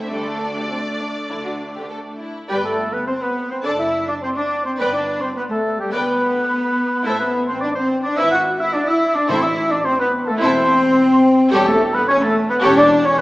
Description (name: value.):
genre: quick classical-period movement for symphony orchestra.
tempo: 106 BPM.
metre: 4/4.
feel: rubato.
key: G major.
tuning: A4 = 440 Hz.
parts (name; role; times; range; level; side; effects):
rich studio violin section; melody; 0.0-12.9 s; C#5 to A5; -30 LUFS; equal; none.
warm studio violin section; second line; 0.0-12.9 s; G3 to D5; -29 LUFS; left 1 dB; none.
rich studio viola section; accompaniment; 0.0-12.9 s; A3 to B4; -24 LUFS; right 1 dB; none.
clear studio cello section; bass; 0.1-13.2 s; D3 to F#4; -24 LUFS; right 1 dB; none.
rich studio double bass section; bass; 0.1-13.1 s; E1 to D2; -32 LUFS; right 1 dB; none.
hollow concert flute; second line; 2.5-13.1 s; G5 to F#6; -25 LUFS; equal; none.
mellow clarinet; second line; 2.5-13.2 s; G4 to F#5; -25 LUFS; equal; none.
warm oboe; second line; 2.5-13.2 s; G4 to F#5; -22 LUFS; right 1 dB; none.
mellow French horn section; sustained chords; 2.5-13.1 s; G3 to F#4; -20 LUFS; left 1 dB; none.
timpani; percussion; 9.3-10.1 s; A2; -32 LUFS; equal; none.
room: moderate scoring stage reverb, RT60 1.8 s.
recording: small speaker sound.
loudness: -16 LUFS.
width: side -19 dB against mid.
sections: 0.0-2.5 A section; 2.5-13.2 B section.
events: none.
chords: 0.1 Dsus4; 2.5 G; 3.6 D/F#; 4.8 G; 7.1 Am; 8.2 E/G#; 9.3 Am; 11.5 A7/E.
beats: | 0.10 0.71 1.31 1.91 | 2.50 3.08 3.65 4.23 | 4.80 5.36 5.92 6.50 | 7.06 7.62 8.18 8.75 | 9.30 9.86 10.42 10.97 | 11.52 12.08 12.64 13.19.